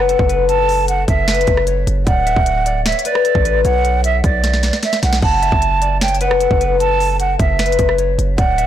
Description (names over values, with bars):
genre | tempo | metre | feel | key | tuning
hip hop, trap | 152 BPM | 4/4 | half-time | F# minor | A4 = 440 Hz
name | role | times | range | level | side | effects
concert harp | melody | 0.0-8.7 s | A4 to F#5 | -19 LUFS | left 8 dB | none
breathy hollow jazz flute | second line | 0.0-8.7 s | D5 to A5 | -18 LUFS | right 5 dB | ping-pong delay
hard-hitting 808-style bass | bass | 0.0-8.7 s | D1 to B1 | -18 LUFS | equal | none
trap drum kit | drums | 0.1-8.7 s | crash cymbal, finger snaps, hi-hat, kick drum, rim click, snare drum | -19 LUFS | equal | soft clipping on snare
room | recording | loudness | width
small room ambience | blown-out, overdriven recording, overdrive | -13 LUFS | side -11 dB against mid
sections
0.0-8.7 A section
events
drum fill 4.4-5.2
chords
0.0 F#m; 2.1 D; 3.6 Bm; 5.2 F#m